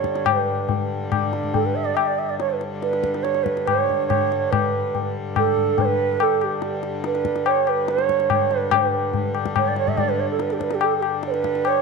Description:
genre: indian classical, Hindustani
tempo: 142 BPM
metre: 5/4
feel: straight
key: G raga yaman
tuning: A4 = 440 Hz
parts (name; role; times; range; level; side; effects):
- mellow hollow bansuri; melody; 0.0-11.8 s; G4 to E5; -22 LUFS; right 8 dB; none
- hand-pumped harmonium; drone; 0.0-11.8 s; G2 to D3; -29 LUFS; left 2 dB; none
- tabla; percussion; 0.0-11.8 s; none; -23 LUFS; left 9 dB; none
room: wet echo chamber reverb, RT60 1.9 s, studio reverb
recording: 1960s-style stereo with parts hard left and right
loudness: -19 LUFS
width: side -4 dB against mid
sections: 0.3-11.8 A section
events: speeding up 0.0-11.8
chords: none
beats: | 0.26 0.69 1.12 1.54 1.97 | 2.40 2.82 3.25 3.67 4.10 | 4.52 4.95 5.37 5.79 6.21 | 6.63 7.05 7.47 7.89 8.31 | 8.73 9.15 9.57 9.98 10.40 | 10.82 11.23 11.65

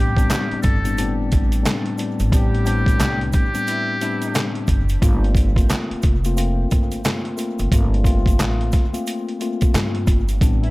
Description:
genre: hip hop, boom-bap hip-hop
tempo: 89 BPM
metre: 4/4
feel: swing 63% on 16ths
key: unclear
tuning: A4 = 440 Hz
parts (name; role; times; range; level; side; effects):
- trumpet with metal mute; melody; 0.0-4.5 s; G4 to A4; -27 LUFS; equal; high-pass filter, low-pass filter, dub echo
- mellow tine electric piano; accompaniment; 0.0-10.7 s; A2 to F4; -24 LUFS; left 3 dB; high-pass filter, low-pass filter, dub echo
- mellow horn section; stabs; 0.0-4.5, 10.6-10.7 s; E3 to G4; -34 LUFS; right 1 dB; high-pass filter, low-pass filter, dub echo
- upright bass; bass; 0.0-10.7 s; F1 to G2; -21 LUFS; equal; none
- trip hop sampler-style drum kit; drums; 0.2-10.7 s; handclaps, hi-hat, kick drum, snare drum; -19 LUFS; equal; none
- tube shaker; percussion; 0.2-10.6 s; none; -38 LUFS; right 7 dB; none
room: little or no reverb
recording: echo-heavy mix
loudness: -17 LUFS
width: side -20 dB against mid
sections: 0.0-10.7 A section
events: none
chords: 0.0 Am11; 5.0 Gm11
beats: 0.30 0.97 1.65 | 2.32 3.00 3.67 4.35 | 5.02 5.69 6.37 7.04 | 7.72 8.39 9.06 9.74 | 10.41

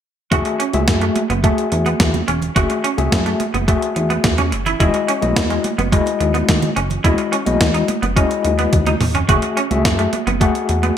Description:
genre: early-eighties boogie funk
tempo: 107 BPM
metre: 4/4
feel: straight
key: F# dorian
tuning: A4 = 439 Hz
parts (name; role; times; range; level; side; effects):
- overdriven tine electric piano; accompaniment; 0.3-11.0 s; G#3 to F#5; -20 LUFS; left 5 dB; medium tremolo, tube saturation
- clean electric guitar; riff; 0.3-10.9 s; G#3 to F#4; -22 LUFS; right 4 dB; lush chorus
- plucky analog bass; bass; 0.3-10.9 s; E1 to F#2; -20 LUFS; equal; none
- clean 12-bit digital drum machine; drums; 0.3-11.0 s; hi-hat, kick drum, snare drum, toms; -19 LUFS; right 1 dB; gated reverb
- congas; percussion; 0.3-11.0 s; none; -27 LUFS; right 10 dB; none
room: moderate plate reverb, RT60 1.7 s, digital ambience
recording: bright 1980s-style digital production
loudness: -15 LUFS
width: side -9 dB against mid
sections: 0.3-11.0 A section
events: drum fill 8.7-9.3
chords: 0.3 F#m9; 4.8 Emaj9; 9.3 F#m9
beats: | 0.32 0.88 1.44 2.00 | 2.56 3.12 3.68 4.24 | 4.80 5.36 5.92 6.49 | 7.05 7.61 8.17 8.73 | 9.29 9.85 10.41 10.97

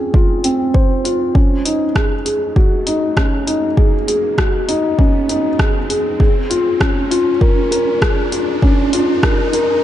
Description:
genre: piano and strings electronica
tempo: 99 BPM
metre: 4/4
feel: straight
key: unclear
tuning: A4 = 442 Hz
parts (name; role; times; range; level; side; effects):
- felt-muted upright piano; riff; 0.0-9.8 s; C4 to C5; -16 LUFS; left 1 dB; tape echo
- riser; sound effects; 0.0-9.8 s; none; -26 LUFS; right 2 dB; none
- electronic kick drum; drums; 0.1-9.4 s; none; -14 LUFS; equal; none
- deep house drum kit; drums; 0.4-9.7 s; hi-hat, rim click; -22 LUFS; equal; none
room: moderate lush hall reverb, RT60 2.0 s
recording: dark, warm production, nothing above 10.3 kHz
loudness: -13 LUFS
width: side -12 dB against mid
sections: 0.0-9.8 A section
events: build-up 0.0-9.8; riser 0.0-9.8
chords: none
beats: 0.14 0.75 | 1.35 1.96 2.56 3.17 | 3.78 4.38 4.99 5.59 | 6.20 6.81 7.41 8.02 | 8.63 9.23

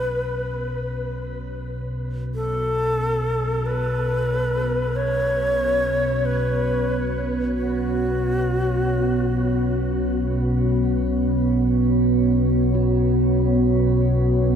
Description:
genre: dark ambient drone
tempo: free time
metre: none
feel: none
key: unclear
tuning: A4 = 441 Hz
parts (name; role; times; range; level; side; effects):
- breathy bright long shakuhachi; melody; 0.0-10.1 s; F#4 to C#5; -24 LUFS; left 1 dB; shimmer reverb, diffuse ambient delay
- deep dark ambient pad; sustained chords; 0.0-14.6 s; B3 to C#5; -22 LUFS; right 1 dB; chorus, built-in reverb, shimmer reverb
- deep rumbling drone; drone; 0.0-14.6 s; B1 to B2; -25 LUFS; equal; built-in reverb, wide subtle chorus
- bronze singing bowl; texture; 0.0-14.6 s; F#4 to B4; -32 LUFS; equal; shimmer reverb
room: wet huge ambient reverb, RT60 7.9 s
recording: none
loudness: -19 LUFS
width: side -8 dB against mid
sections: 0.0-14.6 A section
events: fade-in on synth drone 0.0-14.6; fade-in on singing bowl 0.0-14.6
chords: 0.0 B5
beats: free time

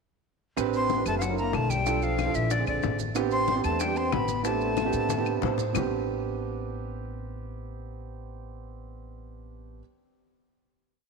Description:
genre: Afro-Cuban jazz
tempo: 186 BPM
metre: 4/4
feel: straight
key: A minor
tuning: A4 = 437 Hz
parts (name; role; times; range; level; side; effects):
- warm grand piano; accompaniment; 0.6-9.8 s; B3 to C5; -31 LUFS; right 11 dB; none
- upright bass; bass; 0.6-9.8 s; F#1 to A2; -33 LUFS; left 1 dB; none
- bongos; percussion; 0.6-5.8 s; none; -36 LUFS; left 14 dB; none
- claves; percussion; 0.6-5.8 s; none; -40 LUFS; left 14 dB; none
- congas; percussion; 0.6-5.8 s; none; -37 LUFS; left 12 dB; none
- maracas; percussion; 0.6-5.8 s; none; -42 LUFS; right 14 dB; none
- breathy bright jazz flute; melody; 0.8-5.4 s; D5 to C6; -30 LUFS; equal; none
- breathy trombone; second line; 0.8-5.4 s; D3 to C4; -33 LUFS; left 11 dB; slapback echo
room: moderate plate reverb, RT60 2.9 s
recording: 1960s-style stereo with parts hard left and right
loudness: -25 LUFS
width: side -4 dB against mid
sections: 0.6-5.7 A section; 5.7-8.3 final chord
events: drum fill 5.1-5.7; grand piano fill 5.3-5.7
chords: 0.6 Am11; 1.2 F#aug7; 1.9 Bm7b5; 2.5 Bb9; 3.2 Am11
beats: | 0.58 0.90 1.22 1.54 | 1.87 2.19 2.51 2.84 | 3.16 3.48 3.81 4.13 | 4.45 4.78 5.10 5.42 | 5.75 6.07 6.39 6.72 | 7.04 7.37 7.69 8.01

